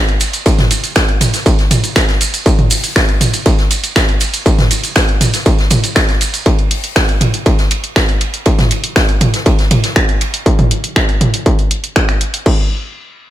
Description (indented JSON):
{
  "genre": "techno",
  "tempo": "120 BPM",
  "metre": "4/4",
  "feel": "straight",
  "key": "none",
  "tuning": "none",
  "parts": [
    { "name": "techno drum kit", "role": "drums", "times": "0.1-12.6 s", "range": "crash cymbal, finger snaps, hi-hat, toms", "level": "-16 LUFS", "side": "right 1 dB", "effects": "none" },
    { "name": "open jazz drum kit", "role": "drums", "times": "0.2-10.3 s", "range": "hi-hat, ride cymbal, snare drum", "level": "-22 LUFS", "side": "right 1 dB", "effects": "sidechain pumping on cymbals, high-pass filter on cymbals, sidechain pumping on hats, high-pass filter on hats, high-pass filter on snare, high-pass filter on room" },
    { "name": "maracas", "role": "percussion", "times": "0.2-6.4 s", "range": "none", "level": "-20 LUFS", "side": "right 3 dB", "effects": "none" },
    { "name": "electronic kick drum", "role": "drums", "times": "0.5-12.6 s", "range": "none", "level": "-12 LUFS", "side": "equal", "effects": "distortion" }
  ],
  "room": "studio ambience",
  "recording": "none",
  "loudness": "-11 LUFS",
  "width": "side -13 dB against mid",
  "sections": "0.0-12.5 A section",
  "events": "drop 0.0-12.5",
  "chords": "none"
}